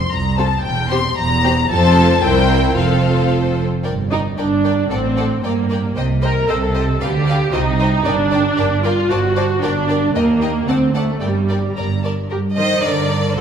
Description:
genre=quick classical-period movement for string orchestra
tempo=113 BPM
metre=2/4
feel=straight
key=F major, G minor from 3.8 s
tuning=A4 = 440 Hz
part: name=warm symphonic violin section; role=melody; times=0.0-13.4 s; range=F#4 to C6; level=-23 LUFS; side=left 4 dB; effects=none
part: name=rich symphonic cello section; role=bass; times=0.0-13.4 s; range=C2 to Eb3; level=-22 LUFS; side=right 2 dB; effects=none
part: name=warm symphonic double bass section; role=bass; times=0.0-13.4 s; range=E1 to G2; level=-20 LUFS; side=right 3 dB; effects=none
part: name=clear symphonic violin section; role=second line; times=0.4-13.4 s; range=G4 to F#5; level=-23 LUFS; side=left 4 dB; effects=none
part: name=clear symphonic viola section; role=accompaniment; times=0.4-13.4 s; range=G3 to C5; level=-19 LUFS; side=right 2 dB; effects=none
room=wet concert hall reverb, RT60 1.8 s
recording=minimal, uncompressed stereo recording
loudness=-14 LUFS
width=side -8 dB against mid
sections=0.0-3.8 A section; 3.8-12.3 B section; 12.3-13.4 B section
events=none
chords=0.0 F; 0.6 C7/E; 1.7 F; 2.2 C7; 2.8 F; 3.8 Gm; 4.9 D7(no3)/A (rootless); 5.4 Gm; 6.0 Cm; 7.0 G5/D; 7.5 Cm; 8.1 Gm; 9.1 D7/G; 9.6 Gm; 10.1 Eb; 10.7 D7; 11.2 Gm

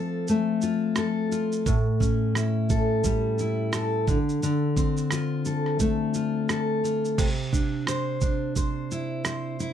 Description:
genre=acoustic pop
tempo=87 BPM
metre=4/4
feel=swing 60% on 16ths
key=unclear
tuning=A4 = 440 Hz
part: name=fingerpicked steel-string acoustic guitar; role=accompaniment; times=0.0-9.7 s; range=A2 to C5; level=-24 LUFS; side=left 1 dB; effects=none
part: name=dusty soul sampler-style drum kit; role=drums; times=0.3-9.7 s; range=crash cymbal, kick drum, rim click, shaker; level=-28 LUFS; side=right 2 dB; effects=none
room=light reverb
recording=none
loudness=-23 LUFS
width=side -9 dB against mid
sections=0.0-7.2 A section; 7.2-9.7 B section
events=none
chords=0.0 F; 1.7 A7; 4.1 Dm7; 7.2 Cadd9

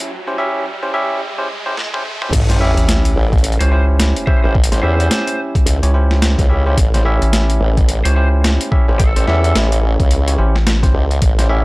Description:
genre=glitch hop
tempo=108 BPM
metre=4/4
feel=swing 60% on 16ths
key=unclear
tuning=A4 = 440 Hz
part: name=bell-like tine electric piano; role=stabs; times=0.0-11.6 s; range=C#4 to E5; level=-21 LUFS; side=equal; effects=vintage 12-bit sampler grit, sidechain pumping, analog delay
part: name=boom bap sampler-style drum kit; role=drums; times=0.0-11.5 s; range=crash cymbal, hi-hat, snare drum, toms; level=-21 LUFS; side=equal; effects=overdrive
part: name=riser and sub drop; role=sound effects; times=0.0-4.6 s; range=none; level=-23 LUFS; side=equal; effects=none
part: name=formant-sweep wobble bass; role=bass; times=2.3-11.6 s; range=A1 to E2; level=-15 LUFS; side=equal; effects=chorus
part: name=electronic kick drum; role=drums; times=2.3-11.4 s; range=none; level=-14 LUFS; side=equal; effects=overdrive, high-pass filter on kick, high-pass filter on room
part: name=rubbery square bass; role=bass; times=2.8-10.9 s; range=A1 to C#2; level=-13 LUFS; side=equal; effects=none
part: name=lead guitar through a small cranked amp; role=melody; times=3.6-9.6 s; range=A4 to B#4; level=-25 LUFS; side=right 1 dB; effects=overdrive, analog delay
room=digital ambience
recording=dry, gritty hardware recording, high-pass filter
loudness=-12 LUFS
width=side -23 dB against mid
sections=0.0-2.3 A section; 2.3-11.6 B section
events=build-up 0.0-2.3; riser 0.0-2.3; filter sweep 0.0-2.3; drum fill 1.8-2.3; drop 2.3-11.6; impact 2.3-4.6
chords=0.0 A7#9 (rootless); 2.3 A7#9

